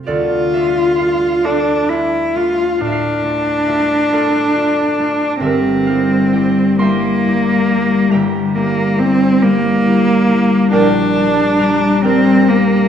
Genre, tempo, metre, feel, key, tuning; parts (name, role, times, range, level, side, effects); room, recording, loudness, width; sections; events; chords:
classical, romantic duo for cello and harp; 46 BPM (dotted quarters); 12/8; rubato; D minor; A4 = 443 Hz
concert harp; accompaniment; 0.0-12.9 s; G1 to C6; -15 LUFS; left 1 dB
rich cello; melody; 0.1-12.9 s; G3 to F4; -14 LUFS; equal
wet recital hall reverb, RT60 1.5 s; heard from further back in the room; -12 LUFS; side -8 dB against mid
0.1-12.9 A section
0.1 Dm; 5.4 Edim/G; 10.7 Gm/Bb